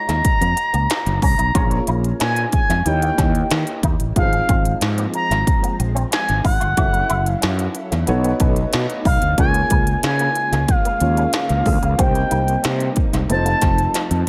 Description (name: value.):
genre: polished 1980s jazz-funk pop.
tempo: 92 BPM.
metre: 4/4.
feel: straight.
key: unclear.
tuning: A4 = 442 Hz.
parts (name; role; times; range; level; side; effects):
expressive synth lead; melody; 0.0-14.2 s; F5 to Bb5; -24 LUFS; equal; chorus.
warm grand piano; accompaniment; 0.0-14.3 s; F3 to Fb5; -28 LUFS; equal; lush chorus.
electric guitar with an envelope filter; riff; 0.1-13.8 s; Ab3 to Gb4; -32 LUFS; equal; ensemble chorus.
fretless electric bass; bass; 0.1-14.2 s; F1 to Eb3; -23 LUFS; equal; none.
industrial drum kit; drums; 0.1-14.3 s; hi-hat, kick drum, snare drum; -23 LUFS; equal; gated reverb.
soft string machine; sustained chords; 4.8-14.3 s; C3 to A4; -33 LUFS; equal; none.
room: light reverb.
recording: none.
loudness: -18 LUFS.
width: mono.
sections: 0.0-14.3 A section.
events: drum fill 13.9-14.3.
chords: 0.0 Ebm11; 1.6 Bbm7; 2.9 Eb7b9; 4.2 Ab6; 6.8 Gbm7; 8.1 B9; 9.4 Db6; 12.0 Cm7; 13.3 F7.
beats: 0.24 0.90 | 1.55 2.20 2.86 3.51 | 4.16 4.82 5.47 6.12 | 6.77 7.43 8.08 8.73 | 9.38 10.04 10.69 11.34 | 11.99 12.64 13.30 13.95.